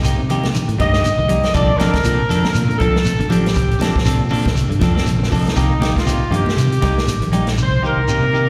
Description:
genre	afrobeat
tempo	119 BPM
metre	4/4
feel	swing 56% on 16ths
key	C dorian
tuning	A4 = 440 Hz
part	mellow horn section	melody	0.0-8.5 s	Eb4 to Eb5	-23 LUFS	equal	slapback echo
part	clean electric guitar	arpeggios	0.0-8.5 s	C3 to G3	-25 LUFS	equal	ensemble chorus, slapback echo
part	clean electric guitar	stabs	0.0-8.5 s	F3 to A4	-26 LUFS	equal	slapback echo
part	fingered electric bass	bass	0.0-8.5 s	A1 to C3	-22 LUFS	equal	none
part	vintage drum kit	drums	0.0-7.6 s	hi-hat, kick drum, snare drum	-24 LUFS	equal	none
part	congas	percussion	0.0-7.5 s	none	-27 LUFS	equal	slapback echo
part	shekere	percussion	0.0-8.5 s	none	-28 LUFS	equal	none
room	light reverb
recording	live gig heard through the venue's PA, recital hall reverb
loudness	-17 LUFS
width	mono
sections	0.0-8.5 A section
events	none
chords	0.0 Cm7; 1.5 Bbmaj9; 5.6 Cm7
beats	0.04 0.54 1.04 | 1.55 2.05 2.55 3.05 | 3.56 4.06 4.56 5.06 | 5.57 6.07 6.57 7.08 | 7.58 8.08

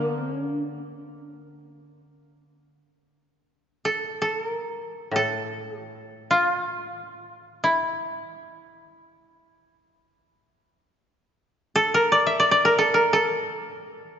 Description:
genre	japanese traditional, Japanese chamber music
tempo	free time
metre	none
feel	none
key	D hirajoshi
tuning	A4 = 440 Hz
part	koto	melody	0.0-14.2 s	D4 to E5	-22 LUFS	equal	none
part	koto	accompaniment	0.0-8.2 s	A2 to D3	-34 LUFS	equal	none
room	moderate church reverb, RT60 2.7 s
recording	nothing above 7.5 kHz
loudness	-21 LUFS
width	side -8 dB against mid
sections	0.0-3.0 A section; 3.0-14.2 A section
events	none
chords	none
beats	free time

